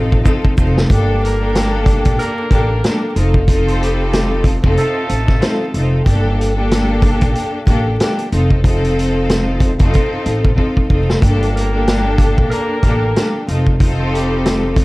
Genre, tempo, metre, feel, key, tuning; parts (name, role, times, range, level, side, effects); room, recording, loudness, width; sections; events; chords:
hip hop, boom-bap hip-hop; 93 BPM; 4/4; swing 59% on 16ths; G minor; A4 = 440 Hz
bright studio string section; accompaniment; 0.0-14.8 s; Bb3 to A4; -18 LUFS; left 1 dB; cassette tape, high-pass filter, low-pass filter
dark analog pad; sustained chords; 0.0-0.9 s; Eb3 to F4; -31 LUFS; left 1 dB
upright bass; bass; 0.0-14.8 s; F1 to Bb1; -17 LUFS; equal
vintage drum kit; drums; 0.1-14.8 s; hi-hat, kick drum, snare drum; -16 LUFS; equal
tube shaker; percussion; 0.3-0.8 s; -41 LUFS; right 7 dB
edgy saxophone section; stabs; 1.1-5.6, 11.4-14.7 s; G3 to D5; -25 LUFS; right 1 dB; high-pass filter, low-pass filter, digital delay
light reverb; dark, warm production, vinyl crackle; -12 LUFS; side -21 dB against mid
0.9-14.8 A section
drum fill 0.0-0.9, 10.6-11.2
0.0 F7; 0.9 Gmadd9; 3.2 F7; 6.1 Gmadd9; 8.3 F7; 11.2 Gmadd9; 13.5 F7